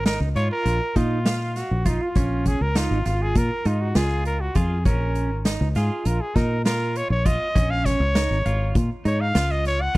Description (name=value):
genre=progressive instrumental, band music in an uneven meter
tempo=200 BPM (eighths)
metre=9/8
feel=straight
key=Bb minor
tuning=A4 = 441 Hz
part: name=clear trumpet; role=melody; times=0.0-10.0 s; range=Eb4 to Gb5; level=-26 LUFS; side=equal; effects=none
part: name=fingered electric bass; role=bass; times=0.0-10.0 s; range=Ab1 to Bb2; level=-23 LUFS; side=equal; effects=none
part: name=twelve-string electric guitar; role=arpeggios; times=0.1-10.0 s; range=Db4 to F5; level=-30 LUFS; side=right 3 dB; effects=spring reverb
part: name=street-band drum kit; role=drums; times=0.1-10.0 s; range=hi-hat, kick drum, snare drum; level=-24 LUFS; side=equal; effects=none
room=little or no reverb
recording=dry, close 1970s-style studio recording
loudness=-20 LUFS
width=side -20 dB against mid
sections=0.0-10.0 A section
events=trumpet solo 0.0-10.0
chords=0.0 Bbm7